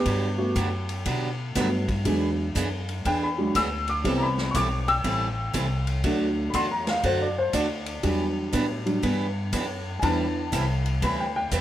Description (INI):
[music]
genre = country, western swing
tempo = 120 BPM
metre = 4/4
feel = swing 66% on 8ths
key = unclear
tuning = A4 = 444 Hz
[part]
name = dark upright piano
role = accompaniment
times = 0.0-11.6 s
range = E3 to E6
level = -26 LUFS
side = equal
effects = none
[part]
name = upright bass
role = bass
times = 0.0-11.6 s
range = A1 to B2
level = -28 LUFS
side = equal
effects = none
[part]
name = picked steel-string acoustic guitar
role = accompaniment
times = 0.1-11.6 s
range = D3 to B4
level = -30 LUFS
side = right 3 dB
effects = none
[part]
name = swinging big-band drum kit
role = drums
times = 0.1-11.6 s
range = hi-hat, kick drum, ride cymbal, snare drum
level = -33 LUFS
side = left 1 dB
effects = none
[sound]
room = moderate echo chamber reverb, RT60 1.9 s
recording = none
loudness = -23 LUFS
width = side -12 dB against mid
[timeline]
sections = 0.0-11.6 A section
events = upright piano solo 0.0-11.6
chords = 0.1 Gmaj7; 2.1 E7; 4.0 Am7; 6.0 D; 8.0 Em7; 10.0 Cmaj7